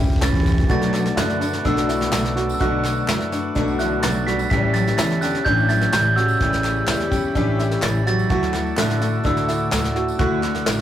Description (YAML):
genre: indie folk with a building arrangement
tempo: 126 BPM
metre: 4/4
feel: straight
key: unclear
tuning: A4 = 441 Hz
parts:
  - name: picked steel-string acoustic guitar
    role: accompaniment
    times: 0.0-10.8 s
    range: A2 to G4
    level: -24 LUFS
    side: left 4 dB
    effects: none
  - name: dark upright piano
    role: arpeggios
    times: 0.0-10.8 s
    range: C#4 to F#4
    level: -28 LUFS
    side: right 3 dB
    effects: none
  - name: soft brush drum kit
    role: drums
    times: 0.0-10.8 s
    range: kick drum, snare drum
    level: -23 LUFS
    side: equal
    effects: none
  - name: tambourine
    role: percussion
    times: 0.1-10.8 s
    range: none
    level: -40 LUFS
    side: right 5 dB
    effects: none
  - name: glockenspiel with rubber mallets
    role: melody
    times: 0.2-10.8 s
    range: E6 to B6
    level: -24 LUFS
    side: right 4 dB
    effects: none
  - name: dark cello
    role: second line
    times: 0.2-10.8 s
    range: A2 to G3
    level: -28 LUFS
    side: right 2 dB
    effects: none
  - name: upright bass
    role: bass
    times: 0.2-10.8 s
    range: A1 to F#2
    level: -26 LUFS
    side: left 1 dB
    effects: none
  - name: group handclap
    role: percussion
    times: 0.2-10.8 s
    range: none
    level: -33 LUFS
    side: left 1 dB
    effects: none
  - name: pedal harmonium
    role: sustained chords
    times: 0.7-10.8 s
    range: F#4 to B5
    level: -32 LUFS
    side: left 1 dB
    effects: none
room: moderate small room ambience, RT60 0.5 s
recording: rough rehearsal-room recording, warm saturation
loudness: -17 LUFS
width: side -11 dB against mid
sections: 0.7-10.8 A section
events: drum fill 0.0-0.7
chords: 0.0 A7; 0.7 Bm7; 4.5 A7; 8.3 Dadd9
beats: 0.22 | 0.70 1.18 1.65 2.13 | 2.60 3.08 3.55 4.03 | 4.50 4.98 5.45 5.93 | 6.40 6.88 7.35 7.83 | 8.30 8.77 9.25 9.72 | 10.20 10.67